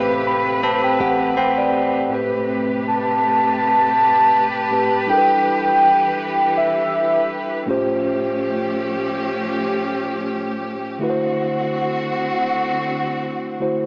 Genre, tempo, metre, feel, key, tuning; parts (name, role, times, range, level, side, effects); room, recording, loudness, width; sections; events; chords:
contemporary R&B; 81 BPM; 4/4; swing 54% on 16ths; A4 = 441 Hz
mellow tine electric piano; accompaniment; 0.0-13.9 s; A2 to B5; -24 LUFS; equal
warm studio string section; sustained chords; 0.0-13.9 s; C3 to B4; -26 LUFS; equal
direct-recorded clean electric guitar; arpeggios; 0.0-2.7 s; A3 to B4; -26 LUFS; equal; spring reverb, tape echo
warm 808-style bass; bass; 0.0-2.1 s; A1; -41 LUFS; equal
warm velvety synth lead; melody; 2.9-7.6 s; E5 to A5; -19 LUFS; equal; chorus
light reverb, digital ambience; dry, gritty hardware recording, cassette tape, small speaker sound; -19 LUFS; mono
0.0-2.1 A section; 2.1-13.9 B section
tine electric piano fill 0.0-2.1
0.0 Am9; 5.1 G6; 7.7 A7alt; 11.0 D7